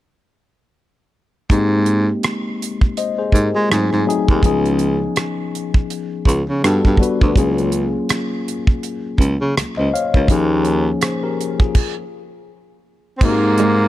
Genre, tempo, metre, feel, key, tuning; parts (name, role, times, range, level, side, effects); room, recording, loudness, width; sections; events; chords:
R&B, neo-soul; 82 BPM; 4/4; swing 56% on 16ths; Ab major; A4 = 440 Hz
tine electric piano; accompaniment; 1.5-13.9 s; F3 to F5; -20 LUFS; left 3 dB; auto-pan, analog delay
mellow baritone saxophone; bass; 1.5-13.9 s; Db2 to Ab3; -18 LUFS; right 1 dB
damped 70s drum kit; drums; 1.5-13.8 s; crash cymbal, hi-hat, kick drum, rim click; -17 LUFS; right 1 dB
clear tenor saxophone; melody; 13.2-13.9 s; Bb3 to C4; -18 LUFS; right 1 dB
archtop guitar, miked and amplified; second line; 13.6-13.7 s; Ab3; -21 LUFS; right 7 dB; analog delay
small room ambience; echo-heavy mix; -15 LUFS; side -15 dB against mid
1.5-13.2 A section
stop 11.8-13.2
1.5 Abmaj9; 3.7 Ab7b9; 4.4 Db7; 6.6 Gmaj7; 7.4 Gbmaj7/Db; 10.3 Eb7sus4; 13.2 Abmaj9